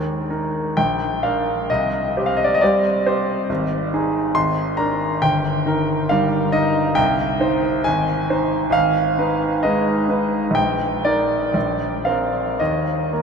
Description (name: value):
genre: classical, romantic character piece for solo piano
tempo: 55-70 BPM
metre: 2/4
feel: rubato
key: Eb major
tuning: A4 = 441 Hz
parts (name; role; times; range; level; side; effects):
- clear grand piano; solo; 0.0-13.2 s; G1 to C6; -17 LUFS; equal; none
room: wet huge ambient reverb, RT60 7.3 s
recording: in a vast, echoing space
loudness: -17 LUFS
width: side -6 dB against mid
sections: 0.0-13.2 A section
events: none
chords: 0.0 Eb5; 0.8 Bb; 1.7 C5; 3.5 Ab5; 4.4 Bb7/Ab; 5.2 Eb/G; 7.0 Cm; 7.9 Ab; 8.7 Abm; 10.6 Eb/Bb; 11.5 Bbadd9; 12.6 Eb5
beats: 0.77 | 1.69 2.61 | 3.49 4.36 | 5.22 6.11 | 6.97 7.86 | 8.74 9.64 | 10.56 11.55 | 12.59